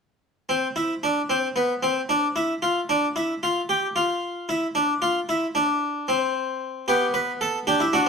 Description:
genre	classical, baroque-style 3-part fugue for harpsichord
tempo	75 BPM (dotted quarters)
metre	12/8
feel	straight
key	unclear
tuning	A4 = 440 Hz
part	harpsichord	solo	0.5-8.1 s	B3 to B4	-21 LUFS	equal	none
room	wet stone room reverb, RT60 1.0 s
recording	minimal, uncompressed stereo recording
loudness	-22 LUFS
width	side -5 dB against mid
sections	0.5-8.1 A section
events	none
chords	0.5 N.C.; 6.9 G/B

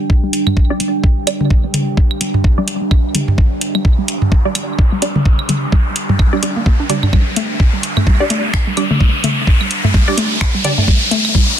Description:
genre	minimal techno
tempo	128 BPM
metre	4/4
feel	swing 58% on 16ths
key	unclear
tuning	A4 = 440 Hz
part	riser	sound effects	1.7-11.6 s	none	-21 LUFS	equal	none
part	deep dark ambient pad	texture	0.0-11.6 s	D4 to G5	-24 LUFS	right 2 dB	chorus, built-in reverb, sidechain pumping
part	electronic kick drum	drums	0.1-11.5 s	none	-12 LUFS	equal	none
part	hollow square pluck	riff	0.2-11.4 s	G3 to D4	-22 LUFS	left 2 dB	chorus, sidechain pumping, digital delay
part	booming analog drum machine	drums	0.3-11.2 s	finger snaps, hi-hat	-21 LUFS	equal	soft clipping on snare
part	electronic toms and claves	percussion	0.5-11.3 s	none	-18 LUFS	right 1 dB	digital delay
part	filtered dub chord stab	stabs	0.7-10.7 s	G3 to D5	-20 LUFS	right 2 dB	phaser, digital delay
room	light reverb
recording	dense, heavily limited modern master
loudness	-12 LUFS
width	side -10 dB against mid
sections	0.0-11.6 A section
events	build-up 0.0-11.6; filter sweep on synth arpeggio sound 0.0-11.6; filter sweep on synth stab 0.0-11.6; riser 1.7-11.6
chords	0.0 G5

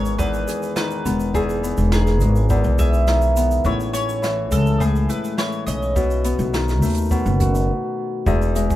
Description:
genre	folktronica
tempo	104 BPM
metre	4/4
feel	straight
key	E major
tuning	A4 = 444 Hz
part	mandolin	melody	0.0-7.6 s	G#4 to E5	-26 LUFS	right 1 dB	ping-pong delay
part	Celtic harp	arpeggios	0.0-8.8 s	E2 to G#4	-23 LUFS	left 2 dB	ping-pong delay
part	upright bass	bass	0.0-8.8 s	E1 to D#2	-20 LUFS	equal	none
part	jazz brush drum kit	drums	0.1-8.8 s	hi-hat, shaker, snare drum	-30 LUFS	right 2 dB	none
part	kick drum	drums	0.2-8.8 s	none	-24 LUFS	equal	none
part	toy piano	second line	8.3-8.7 s	E5	-29 LUFS	left 4 dB	vintage 12-bit sampler grit, ping-pong delay
part	pedal harmonium	sustained chords	8.7-8.8 s	G#4	-30 LUFS	right 4 dB	vintage 12-bit sampler grit
room	light reverb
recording	rough home demo mix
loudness	-17 LUFS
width	side -14 dB against mid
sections	0.0-8.3 A section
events	break 7.7-8.3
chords	0.0 Emaj7; 3.7 Amaj7; 6.0 B7

